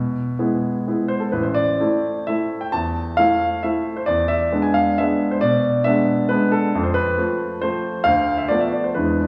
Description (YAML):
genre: classical, piano waltz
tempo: 134 BPM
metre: 3/4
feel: uneven beats, rubato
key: A minor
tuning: A4 = 441 Hz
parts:
  - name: clear baby grand piano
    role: solo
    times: 0.0-9.3 s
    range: A1 to A5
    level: -20 LUFS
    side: equal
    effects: none
room: wet recital hall reverb, RT60 1.7 s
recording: heard from further back in the room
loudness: -20 LUFS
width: mono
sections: 0.0-9.3 A section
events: none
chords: 0.0 E; 1.3 Am; 4.1 E7; 6.7 F; 8.1 Bm7b5/D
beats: 0.38 0.86 | 1.33 1.79 2.26 | 2.72 3.17 3.63 | 4.08 4.52 4.98 | 5.42 5.86 6.31 | 6.75 7.18 7.62 | 8.06 8.49 8.95